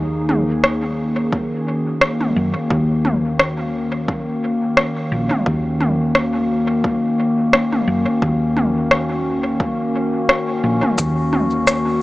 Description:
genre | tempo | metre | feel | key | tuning
ambient dub | 87 BPM | 4/4 | swing 56% on 16ths | Eb minor | A4 = 440 Hz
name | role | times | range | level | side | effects
warbly tape-like pad | sustained chords | 0.0-12.0 s | Eb3 to Ab4 | -19 LUFS | left 1 dB | chorus, built-in reverb
handpan | arpeggios | 0.0-1.3 s | Ab4 | -39 LUFS | right 1 dB | none
hollow-body short-scale fingered electric bass | bass | 0.0-12.0 s | Bb1 to Gb2 | -23 LUFS | equal | tube saturation
organic electronic drum kit | drums | 0.3-11.8 s | rim click, shaker, toms | -19 LUFS | equal | overdrive, dub echo
electronic kick drum | drums | 1.3-11.1 s | none | -23 LUFS | equal | overdrive
room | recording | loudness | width
moderate huge ambient reverb, RT60 6.2 s | small speaker sound | -16 LUFS | side -18 dB against mid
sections
0.0-12.0 A section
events
none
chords
0.0 Ebm7

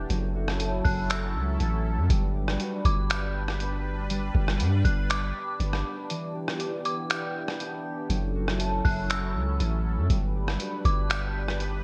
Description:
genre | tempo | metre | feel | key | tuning
hip hop, atmospheric cloud-rap | 120 BPM | 4/4 | half-time | unclear | A4 = 440 Hz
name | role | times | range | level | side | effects
dark detuned synth bell | melody | 0.0-11.8 s | D6 to G6 | -37 LUFS | equal | chorus, delay
sweeping resonant pad | sustained chords | 0.0-11.8 s | E3 to B4 | -37 LUFS | equal | chorus, sidechain pumping
concert harp | arpeggios | 0.0-11.8 s | E3 to D6 | -38 LUFS | equal | delay
long sustained 808-style bass | bass | 0.0-11.8 s | F#1 to G2 | -30 LUFS | equal | none
lo-fi sampler-style drum kit | drums | 0.1-11.7 s | finger snaps, hi-hat, kick drum, rim click | -32 LUFS | equal | gated reverb
room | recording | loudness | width
little or no reverb | bright 1980s-style digital production | -28 LUFS | mono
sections
0.0-11.8 A section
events
kick muted 6.1-7.1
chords
0.1 F#m7; 2.1 Gmaj7; 6.1 Em7; 8.1 F#m7; 10.1 Gmaj7

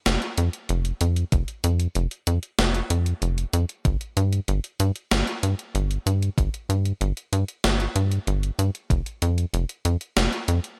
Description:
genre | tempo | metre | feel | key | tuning
synthwave | 95 BPM | 4/4 | straight | unclear | A4 = 441 Hz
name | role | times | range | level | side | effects
tight sequencer bass | bass | 0.1-10.6 s | F1 to G2 | -24 LUFS | equal | none
gated 80s digital drum machine | drums | 0.1-10.8 s | hi-hat, snare drum | -28 LUFS | equal | gated reverb, gated reverb snare, overdrive
electronic kick drum | drums | 1.3-9.0 s | none | -25 LUFS | equal | overdrive
room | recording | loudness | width
little or no reverb | none | -25 LUFS | mono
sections
0.0-10.8 A section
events
none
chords
none

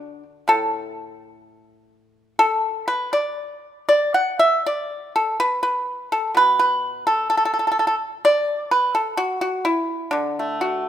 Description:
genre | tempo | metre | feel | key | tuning
chinese traditional, Chinese solo plucked strings | 62 BPM | 2/4 | rubato | D gong mode | A4 = 440 Hz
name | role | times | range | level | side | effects
pipa | solo | 0.0-10.9 s | A2 to F#5 | -18 LUFS | equal | none
room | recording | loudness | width
moderate recital hall reverb, RT60 1.7 s | minimal, uncompressed stereo recording | -18 LUFS | side -10 dB against mid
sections
0.0-10.9 A section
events
none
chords
none

